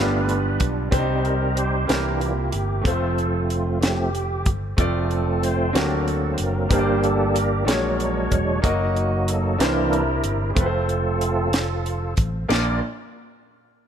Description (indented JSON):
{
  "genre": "slow gospel",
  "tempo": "62 BPM (dotted quarters)",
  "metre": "6/8",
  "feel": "straight",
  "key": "Bb major",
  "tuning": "A4 = 439 Hz",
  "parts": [
    { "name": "bright concert grand piano", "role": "accompaniment", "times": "0.0-12.8 s", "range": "Bb1 to Eb5", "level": "-26 LUFS", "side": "equal", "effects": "none" },
    { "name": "bright tonewheel organ", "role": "sustained chords", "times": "0.0-12.8 s", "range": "E3 to D5", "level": "-24 LUFS", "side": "right 2 dB", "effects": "slow rotary speaker, chorus vibrato" },
    { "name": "fingered electric bass", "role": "bass", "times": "0.0-12.8 s", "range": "E1 to D2", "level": "-25 LUFS", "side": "equal", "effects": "none" },
    { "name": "tight funk drum kit", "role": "drums", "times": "0.3-12.7 s", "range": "crash cymbal, hi-hat, kick drum, snare drum", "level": "-24 LUFS", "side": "equal", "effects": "none" }
  ],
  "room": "light reverb",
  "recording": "none",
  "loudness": "-19 LUFS",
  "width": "side -8 dB against mid",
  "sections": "0.0-12.5 A section; 12.5-13.9 B section",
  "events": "tonewheel organ solo 0.0-12.5",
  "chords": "0.0 G7; 0.9 Cm; 1.9 C7; 2.9 F; 5.7 D7b13; 6.7 Gm; 7.7 Bb7alt; 8.6 Ebm/Gb; 9.6 C9; 10.6 F; 12.5 Bb"
}